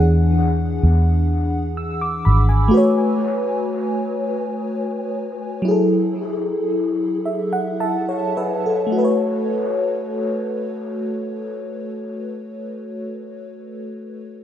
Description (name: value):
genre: R&B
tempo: 34-42 BPM (dotted quarters)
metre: 6/8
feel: straight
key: A major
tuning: A4 = 439 Hz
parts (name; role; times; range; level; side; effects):
- FM electric piano with soft pad layer; accompaniment; 0.0-14.4 s; E3 to E6; -20 LUFS; left 1 dB; chorus, tremolo, dub echo
- vintage muted fingered electric bass; bass; 0.0-2.7 s; G#1 to E2; -16 LUFS; equal; none
room: moderate spring reverb, RT60 1.6 s, digital ambience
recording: echo-heavy mix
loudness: -18 LUFS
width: side -10 dB against mid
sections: 0.0-8.9 A section; 8.9-12.5 B section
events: slowing down 2.7-8.9; FM electric piano fill 7.2-8.9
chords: 0.0 E9; 2.7 A69; 5.7 F#m9; 8.9 A69